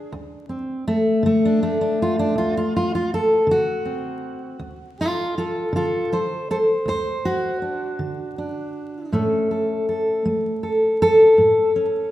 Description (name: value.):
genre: acoustic country blues, solo or duo.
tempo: 53 BPM (dotted quarters).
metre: 12/8.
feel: straight.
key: unclear.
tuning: A4 = 440 Hz.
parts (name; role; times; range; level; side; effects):
fingerpicked steel-string acoustic guitar; solo; 0.0-12.1 s; D2 to C5; -18 LUFS; equal; none.
room: moderate concert hall reverb, RT60 2.0 s.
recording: recorded in a church or concert hall, vinyl crackle.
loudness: -18 LUFS.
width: side -14 dB against mid.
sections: 0.0-12.1 A section.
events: none.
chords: 0.1 D7; 9.1 A.